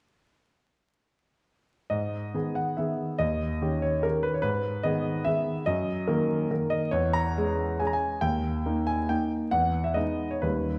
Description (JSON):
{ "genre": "classical, romantic triple-time dance for piano with dotted rhythms", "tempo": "142 BPM", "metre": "3/4", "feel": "uneven beats, rubato", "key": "G# minor", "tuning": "A4 = 440 Hz", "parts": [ { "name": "clear concert grand piano", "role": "solo", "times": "1.9-10.8 s", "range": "D#2 to A#5", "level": "-28 LUFS", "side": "equal", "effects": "none" } ], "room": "wet recital hall reverb, RT60 1.4 s", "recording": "vinyl crackle", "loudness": "-28 LUFS", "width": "mono", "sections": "1.9-10.8 A section", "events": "none", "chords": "1.9 G#m; 3.2 D#7; 4.4 G#m; 5.7 D#m/F#; 6.9 C#m/E; 8.2 D#; 9.5 Emaj7", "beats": "| 1.91 2.35 2.79 | 3.20 3.62 4.04 | 4.44 4.84 5.26 | 5.67 6.09 6.51 | 6.92 7.37 7.80 | 8.22 8.66 9.11 | 9.52 9.96 10.44" }